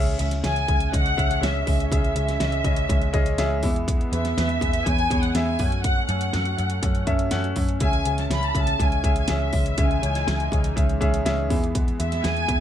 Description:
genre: piano-driven pop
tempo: 122 BPM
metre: 4/4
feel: straight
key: C# minor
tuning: A4 = 441 Hz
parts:
  - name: warm upright piano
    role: accompaniment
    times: 0.0-12.6 s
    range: C#3 to G#5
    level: -27 LUFS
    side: left 1 dB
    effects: none
  - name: chorused pulse-width pad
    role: sustained chords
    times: 0.0-12.6 s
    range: E3 to D#4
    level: -34 LUFS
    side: equal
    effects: none
  - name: vintage muted picked electric bass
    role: bass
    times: 0.0-12.6 s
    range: C#2 to F#2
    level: -26 LUFS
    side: equal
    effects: none
  - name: pop drum kit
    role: drums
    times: 0.1-12.6 s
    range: hi-hat, kick drum, snare drum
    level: -24 LUFS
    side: equal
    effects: none
  - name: warm studio violin section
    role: melody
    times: 0.2-12.6 s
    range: E5 to B5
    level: -27 LUFS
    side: equal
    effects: none
room: light reverb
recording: none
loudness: -20 LUFS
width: side -10 dB against mid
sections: 0.0-12.6 A section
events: none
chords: 0.0 C#m; 3.6 E; 5.6 F#m; 7.8 C#m; 11.5 E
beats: 0.44 0.93 1.43 | 1.92 2.41 2.90 3.39 | 3.88 4.37 4.86 5.35 | 5.84 6.34 6.83 7.32 | 7.81 8.30 8.79 9.29 | 9.78 10.27 10.76 11.25 | 11.74 12.24

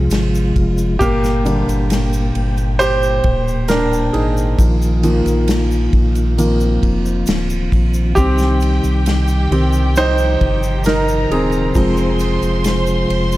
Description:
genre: pop ballad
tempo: 67 BPM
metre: 4/4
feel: straight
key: C minor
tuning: A4 = 440 Hz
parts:
  - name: warm concert grand piano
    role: accompaniment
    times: 0.0-13.4 s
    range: D3 to C5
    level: -18 LUFS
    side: right 1 dB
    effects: none
  - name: mellow tonewheel organ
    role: sustained chords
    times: 0.0-13.4 s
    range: Bb2 to G5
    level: -21 LUFS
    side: equal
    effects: chorus vibrato, slow rotary speaker
  - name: warm sub bass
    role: bass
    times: 0.0-13.4 s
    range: D1 to C2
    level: -18 LUFS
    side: equal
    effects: none
  - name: unplugged drum kit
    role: drums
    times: 0.1-13.4 s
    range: kick drum, ride cymbal, snare drum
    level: -22 LUFS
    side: equal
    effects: none
  - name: tube shaker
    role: percussion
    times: 0.1-13.4 s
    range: none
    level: -36 LUFS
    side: left 3 dB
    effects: none
  - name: warm studio violin section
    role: second line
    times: 8.2-13.4 s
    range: G4 to C6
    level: -24 LUFS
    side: right 1 dB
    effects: diffuse ambient delay
room: light reverb, studio ambience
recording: none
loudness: -13 LUFS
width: side -16 dB against mid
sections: 0.0-13.4 A section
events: grand piano solo 0.0-13.4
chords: 0.0 Fm; 1.0 Gm; 4.6 Bbsus4; 8.2 Cm; 11.8 Fm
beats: 0.11 | 1.01 1.90 2.80 3.69 | 4.59 5.48 6.38 7.28 | 8.17 9.07 9.96 10.86 | 11.75 12.65

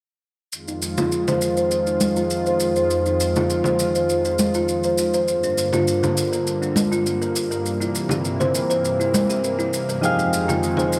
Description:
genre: sunset chillout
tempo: 101 BPM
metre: 4/4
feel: straight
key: F dorian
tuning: A4 = 440 Hz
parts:
  - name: lush unison pad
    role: sustained chords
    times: 0.5-11.0 s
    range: F2 to F4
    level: -27 LUFS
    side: equal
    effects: chorus
  - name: shaker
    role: drums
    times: 0.5-11.0 s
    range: none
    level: -32 LUFS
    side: equal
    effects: overdrive
  - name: buzzing kalimba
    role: arpeggios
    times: 0.7-10.9 s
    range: D4 to C5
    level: -24 LUFS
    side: equal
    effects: low-pass filter, digital delay
  - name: congas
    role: percussion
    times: 1.0-10.9 s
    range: none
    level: -27 LUFS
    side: equal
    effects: none
  - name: soft electric-piano-like synth keys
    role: accompaniment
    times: 10.0-11.0 s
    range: F3 to F5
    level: -23 LUFS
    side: equal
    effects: chorus, digital delay
room: moderate plate reverb, RT60 1.9 s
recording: bright 1980s-style digital production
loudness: -21 LUFS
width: mono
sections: 0.5-11.0 A section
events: filter sweep on kalimba 0.5-11.0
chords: 0.5 Fm7; 5.3 Gm7; 7.7 C7/G; 10.0 Fm7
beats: | 0.53 1.12 1.72 2.31 | 2.91 3.50 4.09 4.69 | 5.28 5.88 6.47 7.06 | 7.66 8.25 8.85 9.44 | 10.03 10.63

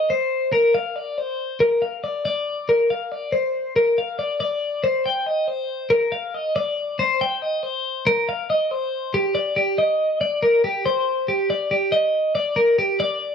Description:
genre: rock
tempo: 140 BPM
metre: 5/4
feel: straight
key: C minor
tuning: A4 = 440 Hz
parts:
  - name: twelve-string electric guitar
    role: solo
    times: 0.0-13.3 s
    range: G4 to G5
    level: -19 LUFS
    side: left 1 dB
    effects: spring reverb
room: light reverb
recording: dry, close 1970s-style studio recording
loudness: -19 LUFS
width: side -7 dB against mid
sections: 0.0-8.7 A section; 8.7-13.3 B section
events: none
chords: none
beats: | 0.10 0.53 0.96 1.39 1.82 | 2.25 2.69 3.12 3.55 3.98 | 4.41 4.84 5.27 5.70 6.13 | 6.56 6.99 7.42 7.85 8.28 | 8.71 9.14 9.57 10.00 10.43 | 10.85 11.28 11.71 12.14 12.57 | 13.00

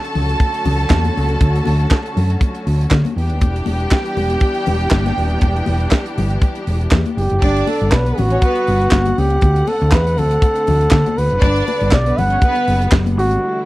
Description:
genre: disco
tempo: 120 BPM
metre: 4/4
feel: swing 56% on 16ths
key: unclear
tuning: A4 = 439 Hz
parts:
  - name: warm symphonic violin section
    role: second line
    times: 0.0-12.9 s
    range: B3 to A5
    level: -23 LUFS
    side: right 1 dB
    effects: none
  - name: clear studio string section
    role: sustained chords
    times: 0.0-13.7 s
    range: D3 to F#5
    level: -26 LUFS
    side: left 1 dB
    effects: none
  - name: tight funk drum kit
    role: drums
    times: 0.0-13.4 s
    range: crash cymbal, handclaps, hi-hat, kick drum, snare drum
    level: -15 LUFS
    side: equal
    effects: none
  - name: hollow-body short-scale fingered electric bass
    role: bass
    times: 0.2-13.4 s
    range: Eb1 to D3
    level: -17 LUFS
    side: equal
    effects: none
  - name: congas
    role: percussion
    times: 0.2-13.2 s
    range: none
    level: -26 LUFS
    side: left 5 dB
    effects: none
  - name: group handclap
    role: percussion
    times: 0.9-13.1 s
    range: none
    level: -32 LUFS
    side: right 11 dB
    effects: none
  - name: breathy flugelhorn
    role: melody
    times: 7.2-13.6 s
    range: F#4 to F#5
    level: -18 LUFS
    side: equal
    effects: none
room: little or no reverb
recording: dry, close 1970s-style studio recording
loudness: -13 LUFS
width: side -18 dB against mid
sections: 0.0-7.4 A section; 7.4-13.7 B section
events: break 13.4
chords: 0.0 Dmaj7; 3.2 Em7; 7.4 Gmaj7; 9.4 D7; 11.4 Gmaj7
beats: 0.40 0.90 | 1.40 1.91 2.41 2.91 | 3.41 3.91 4.42 4.92 | 5.42 5.92 6.42 6.92 | 7.42 7.93 8.43 8.93 | 9.43 9.93 10.43 10.93 | 11.43 11.93 12.43 12.93 | 13.43

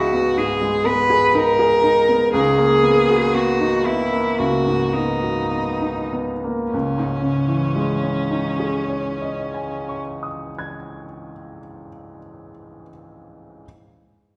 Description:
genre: classical, impressionist duo for cello and grand piano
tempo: 47-62 BPM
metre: 4/4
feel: rubato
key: C# dorian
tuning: A4 = 440 Hz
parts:
  - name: rich cello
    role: melody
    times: 0.0-10.0 s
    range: C#4 to B4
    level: -22 LUFS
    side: equal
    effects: none
  - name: clear baby grand piano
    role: accompaniment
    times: 0.0-13.7 s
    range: C#2 to G#6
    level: -24 LUFS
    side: equal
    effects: none
room: wet recital hall reverb, RT60 1.6 s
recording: heard from further back in the room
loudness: -19 LUFS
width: mono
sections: 0.0-6.7 A section; 6.7-11.4 B section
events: slowing down 0.0-6.7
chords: 0.0 C#sus2; 2.3 G#m9/C#; 6.7 C#madd9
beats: 0.37 1.34 | 2.33 3.35 4.39 5.51 | 6.74 7.91 9.08 10.26

